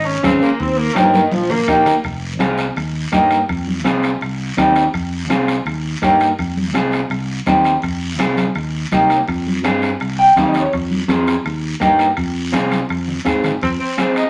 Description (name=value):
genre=latin, cumbia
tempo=166 BPM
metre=4/4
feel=straight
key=F minor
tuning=A4 = 440 Hz
part: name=mellow saxophone section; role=melody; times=0.0-2.0, 13.6-14.3 s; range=Eb3 to Eb4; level=-21 LUFS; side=equal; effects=none
part: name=fingered electric bass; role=bass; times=0.0-13.8 s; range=F1 to Ab2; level=-25 LUFS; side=equal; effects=none
part: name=electric guitar at the edge of break-up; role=accompaniment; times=0.2-14.2 s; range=Bb3 to G5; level=-17 LUFS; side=equal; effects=none
part: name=bombo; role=percussion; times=0.2-14.3 s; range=none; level=-30 LUFS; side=equal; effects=none
part: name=congas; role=percussion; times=0.2-14.2 s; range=none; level=-26 LUFS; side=equal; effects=none
part: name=guiro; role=percussion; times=0.2-14.3 s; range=none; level=-32 LUFS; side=equal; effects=none
room=wet studio reverb, RT60 0.7 s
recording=none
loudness=-17 LUFS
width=mono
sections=0.0-2.0 A section; 2.0-13.6 B section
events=saxophone section solo 0.0-2.0; drum fill 1.1-2.0, 12.5-13.6; clean electric guitar fill 10.0-10.7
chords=0.0 Db; 0.6 Eb; 2.0 Fm; 2.8 Eb; 3.5 Fm; 4.2 Cm; 4.9 Fm; 5.7 Eb; 6.4 Fm; 7.1 Cm; 7.8 Fm; 8.6 Eb; 9.3 Fm; 10.0 Cm; 10.7 Fm; 11.4 Eb; 12.2 Fm